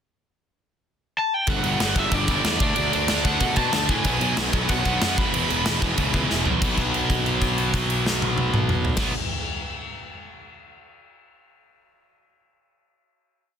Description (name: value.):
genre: punk rock.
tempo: 187 BPM.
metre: 4/4.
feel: straight.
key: unclear.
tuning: A4 = 440 Hz.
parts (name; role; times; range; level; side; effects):
raw garage guitar; melody; 1.2-6.3 s; D5 to B5; -27 LUFS; left 1 dB; overdrive, tape echo.
distorted electric guitar; riff; 1.5-9.1 s; E2 to D4; -24 LUFS; right 1 dB; distortion.
fuzz picked electric bass; bass; 1.5-9.1 s; E1 to B2; -28 LUFS; equal; overdrive.
big rock drum kit; drums; 1.5-9.0 s; crash cymbal, kick drum, snare drum, toms; -24 LUFS; equal; none.
room: little or no reverb.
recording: dense, heavily limited modern master.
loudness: -20 LUFS.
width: side -8 dB against mid.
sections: 0.2-1.5 pickup bar; 1.5-6.6 chorus; 6.6-9.2 final chord.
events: drum fill 6.3-6.6; held note 6.6-9.0.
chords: 0.2 N.C.; 1.5 G5; 2.6 D; 4.1 B5; 5.2 E5; 6.6 B5.